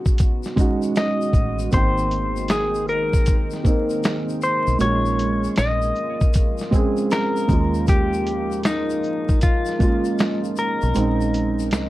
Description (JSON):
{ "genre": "lo-fi hip hop", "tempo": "78 BPM", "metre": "4/4", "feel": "swing 65% on 16ths", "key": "Bb dorian", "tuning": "A4 = 439 Hz", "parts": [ { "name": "clean electric guitar", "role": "melody", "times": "0.0-11.9 s", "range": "Eb4 to D#5", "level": "-24 LUFS", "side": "left 2 dB", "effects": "low-pass filter" }, { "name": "felt-muted upright piano", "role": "accompaniment", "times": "0.0-11.9 s", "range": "G#3 to G5", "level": "-24 LUFS", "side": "right 2 dB", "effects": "cassette tape, low-pass filter" }, { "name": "deep dark ambient pad", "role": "sustained chords", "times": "0.0-11.9 s", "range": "D#3 to G5", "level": "-31 LUFS", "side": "equal", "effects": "chorus, built-in reverb, low-pass filter" }, { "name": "dusty soul sampler-style drum kit", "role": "drums", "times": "0.1-11.9 s", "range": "finger snaps, hi-hat, kick drum, shaker, snare drum", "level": "-20 LUFS", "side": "equal", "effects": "vintage 12-bit sampler grit" }, { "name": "tube shaker", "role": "percussion", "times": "0.1-11.9 s", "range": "none", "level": "-42 LUFS", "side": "left 10 dB", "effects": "none" }, { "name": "deep dub fingered electric bass", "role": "bass", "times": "1.3-11.9 s", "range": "Ab1 to Eb2", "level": "-25 LUFS", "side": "equal", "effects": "none" } ], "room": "moderate small room reverb, RT60 0.5 s", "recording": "vinyl crackle", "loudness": "-18 LUFS", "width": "side -16 dB against mid", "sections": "0.0-11.9 A section", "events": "none", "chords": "0.0 B6/D#; 1.7 Abmaj7; 4.8 Bbm7; 7.5 Eb9sus4; 11.0 Bbm11" }